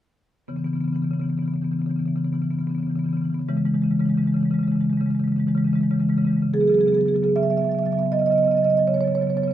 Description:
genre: classical, contemporary piece for solo marimba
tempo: 72-83 BPM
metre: 4/4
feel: rubato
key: C# minor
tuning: A4 = 440 Hz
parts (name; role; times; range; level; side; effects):
- marimba with medium mallets; solo; 0.5-9.5 s; C#3 to E5; -19 LUFS; right 1 dB; none
room: light reverb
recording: none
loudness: -19 LUFS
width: side -12 dB against mid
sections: 0.5-6.5 A section; 6.5-9.5 B section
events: none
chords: 0.5 C#m7; 3.5 E/C#; 6.5 C#m11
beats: | 0.49 1.25 2.01 2.76 | 3.50 4.23 4.96 5.73 | 6.54 7.36 8.11 8.87

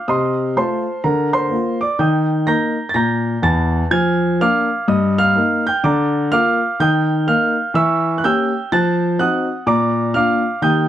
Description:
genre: jazz, stride piano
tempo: 125 BPM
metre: 4/4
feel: swing 62% on 8ths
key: Bb major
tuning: A4 = 439 Hz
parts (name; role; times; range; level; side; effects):
- warm concert grand piano; solo; 0.0-10.9 s; E2 to Bb6; -15 LUFS; equal; none
room: moderate studio reverb, RT60 0.6 s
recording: dark, warm production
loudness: -15 LUFS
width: side -11 dB against mid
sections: 0.0-10.9 A section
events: none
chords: 0.1 F7/C; 1.0 Bb/D; 2.0 Eb; 3.9 Bb7/F; 4.9 Eb/G; 5.8 Bb/D; 6.8 Eb; 7.8 Edim7; 8.7 F7b9; 9.7 Bb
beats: | 0.07 0.56 1.03 1.51 | 2.00 2.48 2.96 3.44 | 3.92 4.39 4.87 5.35 | 5.83 6.31 6.79 7.27 | 7.75 8.23 8.71 9.19 | 9.67 10.14 10.62

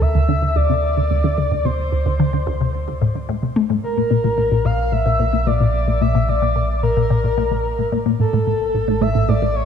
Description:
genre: ambient, sequencer-driven space music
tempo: 110 BPM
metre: 4/4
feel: straight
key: unclear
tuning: A4 = 441 Hz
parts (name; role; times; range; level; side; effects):
- breathy flute-like synth lead; melody; 0.0-9.7 s; A4 to F5; -21 LUFS; left 1 dB; lush chorus, ping-pong delay
- resonant blip pluck; riff; 0.0-9.5 s; D2 to A3; -19 LUFS; left 1 dB; phaser, ping-pong delay
- round analog bass; bass; 0.0-9.7 s; A1 to D2; -22 LUFS; equal; none
room: moderate lush hall reverb, RT60 2.6 s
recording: none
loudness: -16 LUFS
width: side -8 dB against mid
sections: 0.0-9.7 A section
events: none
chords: 0.0 D5; 3.8 Bb; 8.2 N.C.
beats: 0.01 0.56 1.11 | 1.65 2.20 2.74 3.29 | 3.83 4.38 4.92 5.47 | 6.01 6.56 7.11 7.65 | 8.20 8.74 9.29

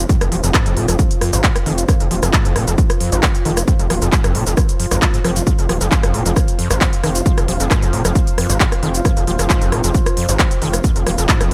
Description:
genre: driving peak-time techno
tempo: 134 BPM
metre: 4/4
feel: straight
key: F minor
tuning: A4 = 440 Hz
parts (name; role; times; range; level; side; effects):
- gritty driven synth bass; bass; 0.0-11.5 s; Eb1 to Ab1; -22 LUFS; equal; sidechain pumping
- deep dark ambient pad; texture; 0.1-11.5 s; F4 to F5; -29 LUFS; equal; chorus, built-in reverb, sidechain pumping
- screaming distorted acid line; riff; 0.1-11.5 s; F2 to F3; -25 LUFS; equal; distortion, analog chorus, sidechain pumping, tape echo
- electronic kick drum; drums; 0.1-11.4 s; none; -18 LUFS; equal; none
- techno drum kit; drums; 0.1-11.5 s; handclaps, hi-hat, rim click, shaker; -22 LUFS; equal; sidechain pumping on hats, sidechain pumping on perc, sidechain pumping on cymbals
room: light reverb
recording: none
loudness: -16 LUFS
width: mono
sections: 0.0-11.5 A section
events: none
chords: 0.0 F5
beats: | 0.10 0.54 0.99 1.44 | 1.89 2.33 2.78 3.23 | 3.68 4.12 4.57 5.02 | 5.47 5.92 6.36 6.81 | 7.26 7.71 8.15 8.60 | 9.05 9.50 9.95 10.39 | 10.84 11.29

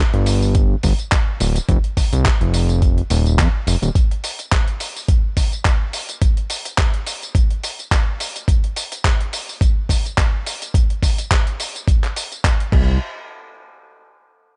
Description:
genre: nu-disco, nu disco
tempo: 106 BPM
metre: 4/4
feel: swing 55% on 16ths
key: unclear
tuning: A4 = 439 Hz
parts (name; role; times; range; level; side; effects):
- fat analog bass; bass; 0.0-3.9, 12.7-13.0 s; D1 to F2; -19 LUFS; equal; tube saturation
- dusty soul sampler-style drum kit; drums; 0.1-12.9 s; crash cymbal, handclaps, hi-hat, tambourine; -26 LUFS; equal; overdrive
- electronic kick drum; drums; 0.6-12.8 s; none; -19 LUFS; equal; overdrive
room: digital ambience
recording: nothing above 10.8 kHz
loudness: -19 LUFS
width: mono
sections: 0.0-13.0 A section; 13.0-14.6 B section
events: none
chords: none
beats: 0.55 1.12 | 1.69 2.25 2.82 3.38 | 3.95 4.52 5.08 5.65 | 6.21 6.78 7.35 7.91 | 8.48 9.04 9.61 10.18 | 10.74 11.31 11.87 12.44

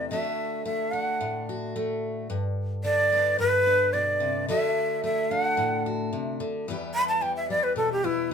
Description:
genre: country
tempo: 110 BPM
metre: 4/4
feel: straight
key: unclear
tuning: A4 = 445 Hz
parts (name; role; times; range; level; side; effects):
- breathy shakuhachi; melody; 0.0-8.3 s; E4 to B5; -24 LUFS; equal; none
- picked steel-string acoustic guitar; accompaniment; 0.0-8.3 s; E2 to G4; -29 LUFS; left 1 dB; none
room: wet studio ambience, RT60 0.4 s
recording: band playing live in one room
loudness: -24 LUFS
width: side -7 dB against mid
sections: 0.0-8.3 A section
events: shakuhachi solo 0.0-8.3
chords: 0.1 D; 2.3 G; 4.5 D; 6.7 Em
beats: | 0.10 0.65 1.20 1.74 | 2.29 2.84 3.39 3.93 | 4.48 5.03 5.58 6.12 | 6.67 7.22 7.76 8.31

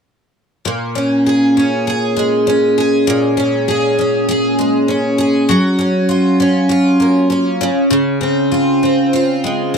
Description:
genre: pop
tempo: 99 BPM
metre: 4/4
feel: straight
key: Bb minor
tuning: A4 = 441 Hz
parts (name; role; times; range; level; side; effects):
- picked twelve-string acoustic guitar; accompaniment; 0.7-9.8 s; Bb2 to Ab4; -12 LUFS; equal; double-tracked left and right
room: light reverb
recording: dry, close 1970s-style studio recording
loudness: -12 LUFS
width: side -6 dB against mid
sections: 0.6-9.8 A section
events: none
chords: 0.6 Bbm7; 5.5 Gbmaj7; 7.6 Dbmaj7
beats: | 0.65 1.25 1.86 2.46 | 3.07 3.68 4.29 4.89 | 5.50 6.10 6.71 7.32 | 7.92 8.53 9.13 9.74

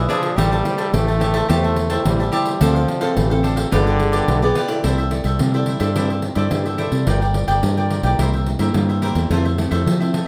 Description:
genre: samba and choro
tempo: 108 BPM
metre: 4/4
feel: straight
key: C major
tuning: A4 = 442 Hz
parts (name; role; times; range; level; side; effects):
- bright trombone; second line; 0.0-4.5 s; D3 to A3; -25 LUFS; equal; none
- cavaquinho; accompaniment; 0.0-10.3 s; D4 to A5; -27 LUFS; equal; none
- nylon-string guitar; accompaniment; 0.0-10.3 s; B2 to D5; -26 LUFS; equal; none
- fingered electric bass; bass; 0.0-10.2 s; G1 to F3; -22 LUFS; equal; none
- pandeiro; percussion; 0.1-10.3 s; none; -26 LUFS; equal; none
room: light reverb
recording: close, detailed microphones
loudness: -19 LUFS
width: mono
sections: 0.0-4.8 A section; 4.8-10.3 B section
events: none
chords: 0.4 Am7; 2.6 Dm7; 3.7 G7b9; 4.8 C69; 7.1 Gm7; 8.2 C7; 9.3 Fmaj7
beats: | 0.38 0.94 1.49 2.05 | 2.61 3.17 3.72 4.28 | 4.84 5.40 5.96 6.51 | 7.07 7.63 8.19 8.75 | 9.31 9.87

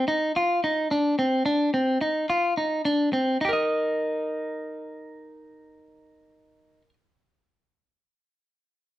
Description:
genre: progressive instrumental, progressive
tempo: 216 BPM (eighths)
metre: 7/8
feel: straight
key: unclear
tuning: A4 = 440 Hz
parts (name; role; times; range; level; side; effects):
- clean electric guitar; arpeggios; 0.0-6.9 s; C4 to Eb5; -23 LUFS; equal; none
room: moderate studio reverb, RT60 0.6 s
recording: dark, warm production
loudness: -22 LUFS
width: side -14 dB against mid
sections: 0.0-3.4 A section; 3.4-7.3 B section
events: none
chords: 0.0 Cmadd9; 3.4 Eb5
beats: 0.08 0.36 0.64 0.91 1.19 | 1.47 1.74 2.02 2.30 2.57 2.85 3.13 | 3.41 3.68 3.96 4.24 4.52 4.79 5.07 | 5.35 5.63 5.91 6.18 6.46 6.74

